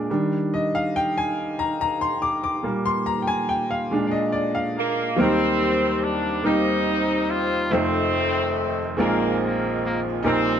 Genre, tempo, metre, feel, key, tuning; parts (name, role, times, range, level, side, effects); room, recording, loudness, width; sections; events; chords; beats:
gospel; 47 BPM (dotted quarters); 6/8; straight; Eb major; A4 = 440 Hz
clear baby grand piano; accompaniment; 0.0-10.6 s; F1 to D6; -22 LUFS; equal
dark horn section; melody; 4.8-10.6 s; Eb3 to F4; -23 LUFS; left 1 dB; plate reverb
moderate small room reverb, RT60 0.6 s; dark, warm production; -20 LUFS; side -8 dB against mid
0.0-5.2 A section; 5.2-10.6 B section
grand piano solo 0.0-5.2
0.1 Ebmaj7; 2.6 Bb13; 3.9 Bb7; 5.2 Eb6; 7.7 F7; 9.0 Bb9sus4
| 0.09 1.36 | 2.63 3.91 | 5.18 6.45 | 7.71 8.98 | 10.25